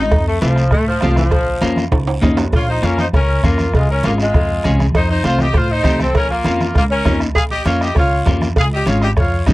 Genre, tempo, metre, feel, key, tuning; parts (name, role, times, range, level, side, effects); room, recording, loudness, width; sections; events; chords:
latin, cumbia; 199 BPM; 4/4; straight; Bb dorian; A4 = 440 Hz
clear saxophone section; melody; 0.0-9.5 s; F3 to Ab4; -19 LUFS; equal
clean electric guitar; accompaniment; 0.0-9.5 s; Ab3 to Ab4; -19 LUFS; left 1 dB
upright bass; bass; 0.0-9.5 s; Ab1 to A2; -18 LUFS; equal
bombo; percussion; 0.1-9.5 s; -19 LUFS; equal
cowbell and timbales; percussion; 0.1-9.5 s; -25 LUFS; right 4 dB
guiro; percussion; 0.1-9.5 s; -34 LUFS; right 3 dB
congas; percussion; 0.3-9.5 s; -24 LUFS; right 1 dB
growling trumpet; second line; 2.6-9.4 s; F4 to F5; -24 LUFS; left 2 dB
little or no reverb; cassette tape; -13 LUFS; side -19 dB against mid
0.0-2.5 A section; 2.5-9.5 B section
saxophone section solo 0.0-2.5; drum fill 1.9-2.5
0.1 F; 1.3 Bbm; 3.7 Db; 4.9 F7; 6.2 Bbm; 8.6 Db